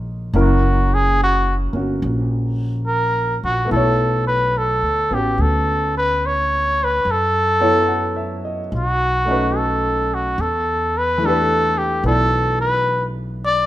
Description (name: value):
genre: jazz ballad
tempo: 72 BPM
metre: 4/4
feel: swing 67% on 8ths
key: B minor from 3.7 s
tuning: A4 = 440 Hz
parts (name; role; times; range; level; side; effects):
- warm baby grand piano; accompaniment; 0.0-13.7 s; Eb3 to F#5; -23 LUFS; left 1 dB; none
- upright bass; bass; 0.0-13.7 s; Gb1 to F#2; -22 LUFS; equal; none
- trumpet with cup mute; melody; 0.4-13.7 s; F#4 to D5; -18 LUFS; equal; none
room: light reverb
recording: minimal, uncompressed stereo recording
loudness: -16 LUFS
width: side -14 dB against mid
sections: 0.0-3.7 A section; 3.7-13.7 B section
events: muted trumpet solo 0.0-3.7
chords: 0.3 Gb7; 3.7 Bm7; 7.0 F#m7; 8.7 B7; 10.4 Em7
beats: | 0.34 1.17 2.01 2.85 | 3.70 4.54 5.38 6.21 | 7.05 7.88 8.71 9.55 | 10.38 11.21 12.05 12.88